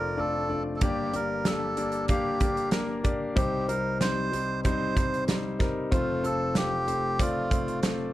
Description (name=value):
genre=piano-driven pop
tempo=94 BPM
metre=4/4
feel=straight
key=G minor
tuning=A4 = 440 Hz
part: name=melodica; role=melody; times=0.0-7.8 s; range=F4 to C5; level=-30 LUFS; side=right 1 dB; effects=slapback echo
part: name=clear concert grand piano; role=accompaniment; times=0.0-8.1 s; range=F1 to F5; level=-28 LUFS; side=left 2 dB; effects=none
part: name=modern studio drum kit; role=drums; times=0.8-8.0 s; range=hi-hat, kick drum, snare drum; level=-28 LUFS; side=right 1 dB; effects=none
room=light reverb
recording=none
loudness=-25 LUFS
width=side -15 dB against mid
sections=0.0-8.1 A section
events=none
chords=0.0 Dm/F; 0.8 Gm; 3.4 Cm; 5.9 F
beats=0.18 | 0.82 1.46 2.10 2.73 | 3.37 4.01 4.65 5.28 | 5.92 6.56 7.20 7.83